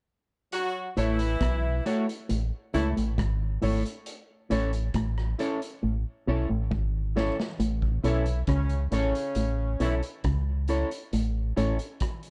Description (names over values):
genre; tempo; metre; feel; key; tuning
roots reggae; 68 BPM; 4/4; straight; A major; A4 = 440 Hz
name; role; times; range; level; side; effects
warm horn section; second line; 0.5-9.9 s; C#3 to F#4; -34 LUFS; equal; none
vintage drum kit; drums; 0.5-12.3 s; hi-hat, kick drum, rim click, snare drum; -37 LUFS; equal; vintage 12-bit sampler grit
clean electric guitar; accompaniment; 1.0-11.8 s; A3 to C#5; -35 LUFS; equal; lush chorus, plate reverb
electric guitar with an envelope filter; riff; 1.0-11.7 s; G#2 to C#3; -33 LUFS; equal; none
warm baby grand piano; stabs; 1.0-11.7 s; E4 to C#5; -36 LUFS; equal; plate reverb
deep dub fingered electric bass; bass; 1.0-11.8 s; G#1 to C#2; -30 LUFS; equal; none
room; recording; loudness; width
moderate small room reverb, RT60 0.5 s; dark, warm production; -28 LUFS; mono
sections
0.5-7.6 A section; 7.6-12.3 B section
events
drum fill 5.8-7.6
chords
0.5 A